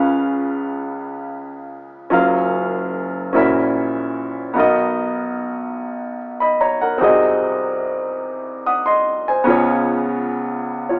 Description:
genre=gospel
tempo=49 BPM (dotted quarters)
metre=6/8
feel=straight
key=F# major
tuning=A4 = 438 Hz
part: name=warm baby grand piano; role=solo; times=0.0-11.0 s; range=F#1 to D#6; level=-20 LUFS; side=equal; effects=none
room=wet studio ambience, RT60 0.5 s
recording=band playing live in one room, small speaker sound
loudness=-19 LUFS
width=mono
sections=0.0-11.0 A section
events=none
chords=0.0 C#7; 2.1 F#maj7; 3.3 F#7/A#; 4.6 Bmaj7; 7.0 G#7/B#; 9.5 C#7

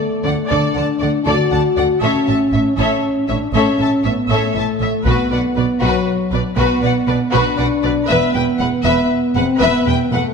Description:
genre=cinematic, epic orchestral film score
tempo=79 BPM (dotted quarters)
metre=12/8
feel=straight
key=unclear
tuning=A4 = 439 Hz
part: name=dark French horn section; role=sustained chords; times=0.0-10.3 s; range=F#3 to F#4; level=-18 LUFS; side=left 2 dB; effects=none
part: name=warm symphonic violin section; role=second line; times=0.2-10.2 s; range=F#4 to G5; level=-24 LUFS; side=left 5 dB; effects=none
part: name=rich symphonic viola section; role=accompaniment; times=0.2-10.2 s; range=B4 to E5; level=-23 LUFS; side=right 1 dB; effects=none
part: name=warm symphonic cello section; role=bass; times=0.2-10.2 s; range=E2 to D3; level=-23 LUFS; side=right 4 dB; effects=none
part: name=warm symphonic violin section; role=melody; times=0.3-10.2 s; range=B4 to A5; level=-24 LUFS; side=left 5 dB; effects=none
part: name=warm studio double bass section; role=bass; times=0.3-10.2 s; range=E1 to D2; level=-22 LUFS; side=right 4 dB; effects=none
part: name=solo taiko drums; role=drums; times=5.1-6.0 s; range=none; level=-23 LUFS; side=left 1 dB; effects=none
room=wet scoring stage reverb, RT60 1.9 s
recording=none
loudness=-14 LUFS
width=side -5 dB against mid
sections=0.0-10.3 A section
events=none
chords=0.0 D; 2.0 A; 5.1 Bm; 8.1 Esus2

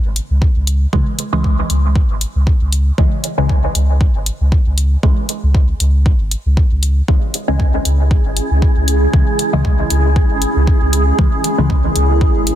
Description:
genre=dub techno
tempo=117 BPM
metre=4/4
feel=swing 55% on 16ths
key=C# dorian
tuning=A4 = 440 Hz
part: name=filtered dub chord stab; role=stabs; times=0.0-12.6 s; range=C#3 to G#3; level=-21 LUFS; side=equal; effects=phaser, sidechain pumping, dub echo
part: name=soft dub sub bass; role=bass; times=0.0-12.5 s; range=G#1 to C#2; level=-15 LUFS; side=equal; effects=sidechain pumping
part: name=electronic hi-hat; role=drums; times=0.2-12.6 s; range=none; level=-19 LUFS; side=left 2 dB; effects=none
part: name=electronic kick drum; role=drums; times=0.4-12.3 s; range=none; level=-14 LUFS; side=equal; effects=none
part: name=granular cloud pad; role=sustained chords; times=7.9-12.6 s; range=C#4 to G#4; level=-20 LUFS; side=right 2 dB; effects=built-in reverb, sidechain pumping
part: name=wind-like tuned noise texture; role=texture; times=7.8-12.6 s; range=G#3 to G#4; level=-23 LUFS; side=equal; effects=built-in reverb, sidechain pumping
room=light reverb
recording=dense, heavily limited modern master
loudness=-12 LUFS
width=side -12 dB against mid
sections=0.0-12.6 A section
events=none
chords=0.0 C#m

